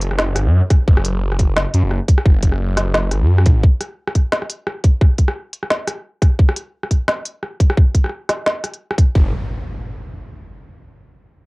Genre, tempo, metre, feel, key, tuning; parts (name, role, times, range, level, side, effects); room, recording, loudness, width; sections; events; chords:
half-time drum and bass; 174 BPM; 4/4; swing 56% on 16ths, half-time; F# minor; A4 = 440 Hz
phased detuned saw bass; bass; 0.0-3.6, 9.2-9.3 s; F#1 to F#2; -16 LUFS; equal; phaser
organic electronic drum kit; drums; 0.0-9.1 s; hi-hat, rim click, snare drum; -21 LUFS; equal; cassette tape
downlifter and impact; sound effects; 0.0-0.9, 9.2-10.5 s; -30 LUFS; equal
electronic kick drum; drums; 0.7-9.2 s; -12 LUFS; equal; cassette tape
little or no reverb; home recording on cassette; -14 LUFS; side -27 dB against mid
0.0-9.2 A section; 9.2-10.5 B section